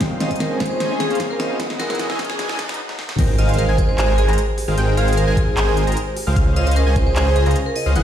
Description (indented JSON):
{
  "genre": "future bass",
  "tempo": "151 BPM",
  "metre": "4/4",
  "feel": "half-time",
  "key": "unclear",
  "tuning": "A4 = 439 Hz",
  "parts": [
    { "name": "overdriven tine electric piano", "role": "accompaniment", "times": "0.0-3.2 s", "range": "F3 to Eb4", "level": "-30 LUFS", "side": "left 2 dB", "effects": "fast tremolo, sidechain pumping, digital delay" },
    { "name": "airy breathy pad", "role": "sustained chords", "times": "0.0-2.8 s", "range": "Db3 to C5", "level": "-35 LUFS", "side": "equal", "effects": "none" },
    { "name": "big bright polysynth", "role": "riff", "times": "0.0-8.0 s", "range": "E3 to B5", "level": "-24 LUFS", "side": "right 2 dB", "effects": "chorus, sidechain pumping, digital delay" },
    { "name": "electronic kick drum", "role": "drums", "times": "0.0-7.0 s", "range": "none", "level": "-20 LUFS", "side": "equal", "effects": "small room reverb" },
    { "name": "pop drum kit", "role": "drums", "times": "0.0-8.0 s", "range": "crash cymbal, handclaps, hi-hat, snare drum", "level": "-27 LUFS", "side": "equal", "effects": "small room reverb" },
    { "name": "riser and impact", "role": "sound effects", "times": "0.0-4.8 s", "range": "none", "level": "-27 LUFS", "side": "equal", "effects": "none" },
    { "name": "vibraphone with hard mallets", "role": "melody", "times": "0.2-7.9 s", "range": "Ab4 to Eb5", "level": "-25 LUFS", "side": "equal", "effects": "sidechain pumping, digital delay" },
    { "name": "thumb-piano-like synth pluck", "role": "arpeggios", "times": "3.2-8.0 s", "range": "F4 to Ab5", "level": "-32 LUFS", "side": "left 2 dB", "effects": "chorus, sidechain pumping, digital delay" },
    { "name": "wide unison pluck", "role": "arpeggios", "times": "3.2-8.0 s", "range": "F6 to Bb6", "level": "-32 LUFS", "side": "equal", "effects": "sidechain pumping, digital delay" },
    { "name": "wide detuned saw bass", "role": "bass", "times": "3.2-8.0 s", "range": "E1 to Db2", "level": "-18 LUFS", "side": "equal", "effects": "chorus, sidechain pumping" }
  ],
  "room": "light reverb",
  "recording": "played on a big sound system in a bare room, stone room reverb, high-pass filter",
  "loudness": "-16 LUFS",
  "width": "side -10 dB against mid",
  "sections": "0.0-3.2 A section; 3.2-8.0 B section",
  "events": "build-up 0.0-3.2; drum fill 0.0-2.8, 2.9; riser 0.0-2.8; filter sweep on analog polysynth 0.0-3.2; filter sweep on vibraphone 0.0-3.2; filter sweep 0.0-3.2; stop 2.8-3.2; drop 3.2-8.0; impact 3.2-4.8",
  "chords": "0.0 Dbmaj7; 1.6 Emaj9; 3.2 Abmaj7; 6.4 Dbmaj7"
}